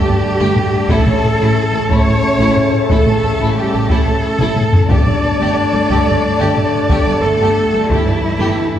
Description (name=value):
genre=cinematic, hybrid orchestral and electronic film score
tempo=60 BPM (dotted quarters)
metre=6/8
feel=straight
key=unclear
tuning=A4 = 439 Hz
part: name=warm symphonic violin section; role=melody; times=0.0-8.8 s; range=A5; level=-26 LUFS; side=left 3 dB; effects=none
part: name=warm studio violin section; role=second line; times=0.0-8.6 s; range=E4 to D5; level=-25 LUFS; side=left 2 dB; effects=none
part: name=dark symphonic viola section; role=accompaniment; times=0.0-8.6 s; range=A3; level=-24 LUFS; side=right 3 dB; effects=none
part: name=hollow soft pad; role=sustained chords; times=0.0-8.8 s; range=A3 to E5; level=-24 LUFS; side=left 1 dB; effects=chorus
part: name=warm French horn section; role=sustained chords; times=0.0-8.8 s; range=E3 to D4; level=-22 LUFS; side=left 4 dB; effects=none
part: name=warm trombone section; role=sustained chords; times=0.0-8.8 s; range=C#3 to A3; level=-24 LUFS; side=right 2 dB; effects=none
part: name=warm symphonic cello section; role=bass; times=0.0-8.8 s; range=E4 to D5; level=-18 LUFS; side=equal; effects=none
part: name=rubbery square bass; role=riff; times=0.1-8.8 s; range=G2 to A3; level=-23 LUFS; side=right 1 dB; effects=none
part: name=dark studio double bass section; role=bass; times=0.1-8.5 s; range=G1 to A1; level=-21 LUFS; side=right 1 dB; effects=none
part: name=taiko ensemble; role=drums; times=0.6-8.5 s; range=none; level=-18 LUFS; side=equal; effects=none
room=wet scoring stage reverb, RT60 1.9 s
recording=heard from further back in the room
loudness=-12 LUFS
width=side -10 dB against mid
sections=0.0-8.8 A section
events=drum fill 4.4-4.9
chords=0.0 Gsus2; 0.9 A; 4.9 Gsus2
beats=| 0.90 1.90 | 2.90 3.90 | 4.90 5.90 | 6.90 7.90